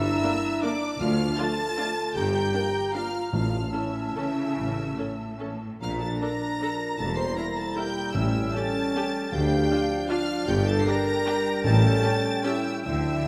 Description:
classical, orchestral ballroom waltz; 135-167 BPM; 3/4; rubato; A4 = 441 Hz
warm studio violin section; melody; 0.0-13.3 s; D6 to C7; -37 LUFS; equal
clear studio violin section; second line; 0.0-13.3 s; D5 to C6; -39 LUFS; equal
flute section; second line; 0.0-13.3 s; F5 to Bb5; -39 LUFS; equal
warm clarinet; second line; 0.0-13.3 s; C#4 to F4; -36 LUFS; equal
mellow French horn section; sustained chords; 0.0-13.3 s; D4 to C5; -32 LUFS; equal
mellow tuba; bass; 0.0-13.2 s; E1 to D2; -36 LUFS; equal
rich studio cello section; bass; 0.0-13.2 s; D2 to D3; -34 LUFS; equal
rich studio double bass section; bass; 0.0-13.2 s; E1 to D2; -33 LUFS; equal
rich studio viola section; accompaniment; 0.2-12.5 s; Bb3 to Bb4; -37 LUFS; equal
warm trombone section; sustained chords; 0.2-13.3 s; D3 to D4; -37 LUFS; equal
timpani; percussion; 1.0-3.9, 8.1-13.3 s; A2 to D3; -36 LUFS; equal
wet scoring stage reverb, RT60 1.6 s; -26 LUFS; mono
0.0-13.3 A section
timpani fill 12.9-13.3
0.0 Gm; 1.0 Dm; 2.2 Gm7; 3.3 A; 5.8 Bbmaj7; 7.0 Edim; 8.1 A7; 9.3 Dm; 10.5 Gm; 11.6 A7

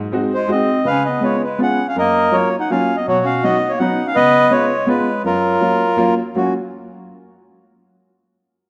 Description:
musette waltz; 164 BPM; 3/4; rubato; F# major; A4 = 439 Hz
clear upright piano; accompaniment; 0.0-6.5 s; F#2 to F#4; -23 LUFS; equal
mellow accordion; melody; 0.3-6.5 s; E#4 to F#5; -19 LUFS; equal
warm clarinet; second line; 0.4-6.5 s; F#3 to D#4; -24 LUFS; equal
moderate concert hall reverb, RT60 2.3 s; -17 LUFS; mono
0.0-6.4 A section; 6.4-7.5 B section
0.0 G#7; 0.9 C#7; 2.0 F#maj7; 3.1 Badd9; 4.2 C#7; 5.2 F#maj7

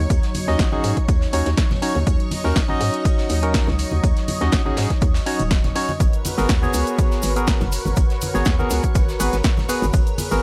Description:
deep house; 122 BPM; 4/4; swing 53% on 16ths; G# minor; A4 = 440 Hz
warm analog pad; sustained chords; 0.0-10.4 s; F#3 to D#5; -32 LUFS; equal; chorus, sidechain pumping
hollow knocking FM bass; bass; 0.0-10.4 s; D#1 to G#2; -25 LUFS; equal; sidechain pumping
string machine, violins; texture; 0.0-10.4 s; C#5 to C#6; -38 LUFS; equal; ensemble chorus
electronic kick drum; drums; 0.1-10.0 s; -22 LUFS; equal; overdrive
modern studio drum kit; drums; 0.1-10.4 s; hi-hat, shaker, snare drum; -39 LUFS; equal
punchy analog drum machine; drums; 0.1-10.3 s; hi-hat, snare drum; -30 LUFS; equal; overdrive
congas; percussion; 0.3-10.3 s; -33 LUFS; equal
percussive organ stab; stabs; 0.5-10.4 s; B3 to D#5; -27 LUFS; equal; chorus, sidechain pumping, tape echo
cabasa; percussion; 6.0-10.4 s; -36 LUFS; equal
little or no reverb; -20 LUFS; mono
0.0-10.4 A section
0.0 D#m7; 6.0 G#m9

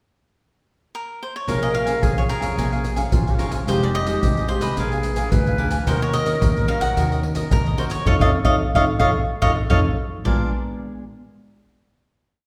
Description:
samba and choro; 109 BPM; 4/4; straight; Bb minor; A4 = 440 Hz
cavaquinho; melody; 0.9-10.5 s; Bb4 to Gb5; -27 LUFS; equal
breathy wooden flute; second line; 1.5-10.5 s; Eb4 to Cb5; -30 LUFS; equal
cavaquinho; accompaniment; 1.5-10.5 s; D4 to Ab5; -32 LUFS; equal
nylon-string guitar; accompaniment; 1.5-11.0 s; Bb2 to C5; -31 LUFS; equal
upright bass; bass; 1.5-10.5 s; F1 to F2; -28 LUFS; equal
maracas, surdo and pandeiro; percussion; 1.5-10.4 s; -24 LUFS; equal
wet recital hall reverb, RT60 1.4 s; recorded in a church or concert hall; -20 LUFS; mono
0.0-1.5 pickup bar; 1.5-10.3 A section; 10.3-12.4 final chord
band accent 8.1-10.3
0.0 N.C.; 1.5 Bbm9; 3.7 Fm9; 4.8 Bb7b9; 5.9 Ebm7; 8.1 Faug7; 10.3 Bb7b9

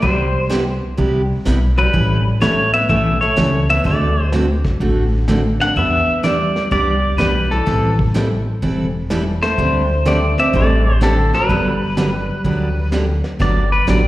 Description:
country, western swing; 126 BPM; 4/4; swing 67% on 8ths; G major; A4 = 440 Hz
pedal steel guitar; melody; 0.0-14.1 s; A4 to F#5; -18 LUFS; left 1 dB; slapback echo
archtop guitar, miked and amplified; second line; 0.0-12.9 s; D3 to D4; -23 LUFS; equal; slapback echo
picked steel-string acoustic guitar; accompaniment; 0.0-14.0 s; C3 to A4; -20 LUFS; right 2 dB; slapback echo
upright bass; bass; 0.0-14.1 s; E1 to E2; -18 LUFS; equal
vintage brush drum kit; drums; 0.0-14.1 s; brushed snare drum, hi-hat, kick drum, snare drum; -25 LUFS; equal
light reverb, small room ambience; live gig heard through the venue's PA, recital hall reverb; -14 LUFS; side -16 dB against mid
0.0-13.4 A section
0.0 Cmaj7; 1.9 A7; 3.9 D7; 5.8 Em7; 7.7 Am7; 9.6 D7sus4; 11.5 Gmaj7

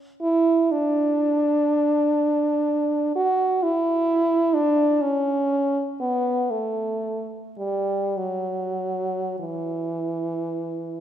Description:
classical, free, expressive piece for unaccompanied French horn; 31-43 BPM (dotted quarters); 6/8; rubato; E dorian; A4 = 442 Hz
clear French horn; solo; 0.2-11.0 s; E3 to F#4; -21 LUFS; right 1 dB
moderate concert hall reverb, RT60 1.9 s; minimal, uncompressed stereo recording; -21 LUFS; side -10 dB against mid
0.0-11.0 A section

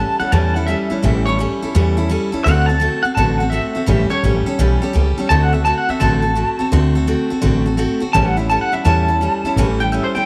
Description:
rock; 169 BPM; 4/4; swing 65% on 8ths; A mixolydian; A4 = 440 Hz
electric guitar at the edge of break-up; melody; 0.0-10.3 s; C5 to A5; -22 LUFS; equal; tremolo, tape echo
picked steel-string acoustic guitar; accompaniment; 0.0-10.3 s; A2 to A4; -21 LUFS; equal
upright bass; bass; 0.2-10.2 s; A1 to E2; -20 LUFS; equal
light reverb; -17 LUFS; mono
0.0-10.3 A section
0.0 A7; 2.5 D7; 3.9 A7; 5.3 D7; 8.1 A7

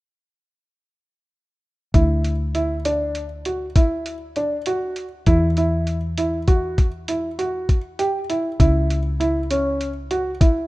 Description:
progressive instrumental, band music in an uneven meter; 198 BPM (eighths); 11/8; straight; A4 = 440 Hz
dark baby grand piano; arpeggios; 1.9-10.7 s; C#4 to G4; -23 LUFS; right 1 dB
woody fretless electric bass; bass; 1.9-10.7 s; C#2 to E2; -23 LUFS; equal
lo-fi sampler-style drum kit; drums; 1.9-10.6 s; hi-hat, kick drum; -18 LUFS; equal
digital ambience; rough home demo mix; -19 LUFS; side -19 dB against mid
1.9-10.7 A section
1.9 Dadd9; 5.3 N.C.; 8.6 C#m

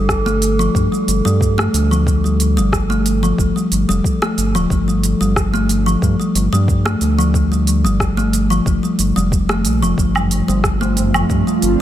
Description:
organic downtempo; 91 BPM; 4/4; swing 54% on 16ths; A4 = 439 Hz
kalimba; arpeggios; 0.0-11.6 s; F3 to A3; -17 LUFS; left 1 dB; ping-pong delay
round analog bass; bass; 0.0-11.8 s; D1 to G2; -18 LUFS; equal
bronze singing bowl; texture; 0.0-11.8 s; A4; -28 LUFS; right 3 dB
electronic kick drum; drums; 0.1-11.4 s; -20 LUFS; equal; small room ambience
organic electronic drum kit; drums; 0.1-11.8 s; hi-hat, rim click, shaker, woodblock; -23 LUFS; right 2 dB; small room ambience
ethereal airy pad; sustained chords; 10.9-11.8 s; A3 to C5; -20 LUFS; right 4 dB; ensemble chorus, built-in reverb, sidechain pumping
tabla; percussion; 10.2-11.8 s; -27 LUFS; right 2 dB
light reverb, small room ambience; -14 LUFS; side -12 dB against mid
0.0-11.8 A section
0.0 G7(no3); 10.0 Dm7

